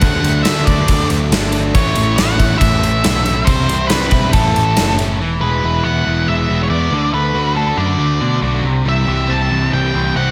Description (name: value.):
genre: classic rock.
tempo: 139 BPM.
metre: 4/4.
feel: straight.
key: unclear.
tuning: A4 = 440 Hz.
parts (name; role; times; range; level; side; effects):
octave-fuzz lead guitar; melody; 0.0-10.3 s; A4 to A5; -21 LUFS; equal; distortion, slapback echo.
biting overdriven guitar; riff; 0.0-10.3 s; A2 to G4; -23 LUFS; equal; none.
distorted electric guitar; riff; 0.0-10.3 s; A2 to G4; -24 LUFS; equal; distortion, slapback echo.
growling picked electric bass; bass; 0.0-10.3 s; E1 to B2; -21 LUFS; equal; overdrive.
gated 80s drum kit; drums; 0.0-5.1 s; kick drum, ride cymbal, snare drum; -18 LUFS; equal; none.
room: moderate lush hall reverb, RT60 1.9 s, small room ambience.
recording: big arena sound.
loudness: -15 LUFS.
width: mono.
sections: 0.0-5.2 A section; 5.2-10.3 B section.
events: none.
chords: 0.0 D; 1.8 A; 3.5 C; 4.3 A; 5.2 E; 6.9 D; 8.7 C.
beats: | 0.03 0.46 0.89 1.32 | 1.75 2.18 2.61 3.04 | 3.47 3.90 4.33 4.76 | 5.19 5.62 6.06 6.49 | 6.92 7.35 7.79 8.22 | 8.65 9.08 9.52 9.95.